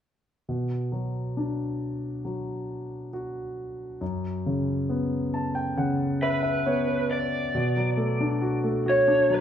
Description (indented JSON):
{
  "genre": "pop ballad",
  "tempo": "68 BPM",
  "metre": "4/4",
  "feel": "straight",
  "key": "B minor",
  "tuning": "A4 = 439 Hz",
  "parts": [
    { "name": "warm concert grand piano", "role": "accompaniment", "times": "0.5-9.4 s", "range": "F#2 to A5", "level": "-26 LUFS", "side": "left 1 dB", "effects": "none" },
    { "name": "lead guitar through a small cranked amp", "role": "melody", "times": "6.2-9.4 s", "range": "B4 to D5", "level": "-25 LUFS", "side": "right 1 dB", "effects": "overdrive" }
  ],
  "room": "wet studio reverb, RT60 0.8 s",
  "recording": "band playing live in one room",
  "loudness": "-24 LUFS",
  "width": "side -9 dB against mid",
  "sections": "0.5-7.5 A section; 7.5-9.4 B section",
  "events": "grand piano fill 4.9-7.5",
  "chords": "0.5 Bm; 4.0 F#sus4; 7.5 Bm7"
}